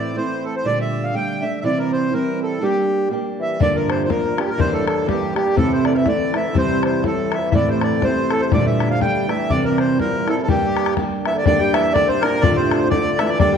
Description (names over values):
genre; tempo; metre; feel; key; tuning
celtic folk, Celtic polka; 122 BPM; 2/4; swing 57% on 8ths; G dorian; A4 = 440 Hz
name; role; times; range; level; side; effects
accordion; melody; 0.0-13.6 s; G4 to G5; -21 LUFS; right 1 dB; none
fingerpicked steel-string acoustic guitar; accompaniment; 0.0-13.6 s; D2 to G4; -20 LUFS; right 2 dB; none
mellow bassoon; second line; 3.4-13.6 s; G2 to G3; -26 LUFS; left 6 dB; none
bodhran; percussion; 3.6-13.5 s; none; -23 LUFS; left 6 dB; none
room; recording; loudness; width
wet recital hall reverb, RT60 1.3 s; dark, warm production; -16 LUFS; side -7 dB against mid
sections
0.0-3.6 A section; 3.6-11.5 A section; 11.5-13.6 B section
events
none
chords
0.0 Am; 0.7 Gmadd9/Bb; 1.6 C; 2.6 Gm; 3.6 Gm7; 4.6 Em7b5; 5.6 Am; 6.6 C; 7.5 Am; 8.5 Gmadd9/Bb; 9.5 C; 10.5 Gm; 12.4 Dm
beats
0.16 | 0.65 1.14 | 1.64 2.13 | 2.62 3.12 | 3.61 4.10 | 4.59 5.08 | 5.58 6.07 | 6.56 7.05 | 7.54 8.03 | 8.52 9.01 | 9.50 9.99 | 10.48 10.97 | 11.46 11.94 | 12.43 12.91 | 13.40